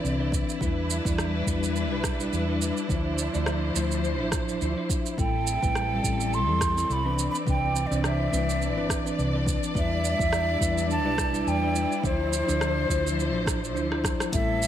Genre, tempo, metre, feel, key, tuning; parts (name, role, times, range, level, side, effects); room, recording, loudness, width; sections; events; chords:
sunset chillout; 105 BPM; 4/4; swing 56% on 16ths; A4 = 444 Hz
bell-like tine electric piano; accompaniment; 0.0-14.7 s; E3 to D5; -31 LUFS; moving between left 5 dB and right 4 dB; auto-pan, low-pass filter, ping-pong delay
warm studio string section; sustained chords; 0.0-14.7 s; D3 to D5; -32 LUFS; left 1 dB
woody fretless electric bass; bass; 0.0-14.7 s; G1 to E2; -29 LUFS; equal; lush chorus
deep house drum kit; drums; 0.1-14.7 s; hi-hat, rim click, shaker; -33 LUFS; right 3 dB
electronic kick drum; drums; 0.3-14.5 s; -29 LUFS; equal
mellow hollow jazz flute; melody; 5.2-14.7 s; C5 to C6; -28 LUFS; right 1 dB; ping-pong delay
wind-like tuned noise texture; texture; 6.2-14.3 s; D5 to D6; -41 LUFS; equal; built-in reverb
moderate digital room reverb, RT60 1.1 s; -24 LUFS; side -10 dB against mid
0.0-14.3 A section
drum fill 13.9-14.3
0.0 Cmaj9; 0.6 Em7; 2.9 Dm9; 5.2 Am7; 7.2 Cmaj9; 9.8 Em7; 12.0 Dm9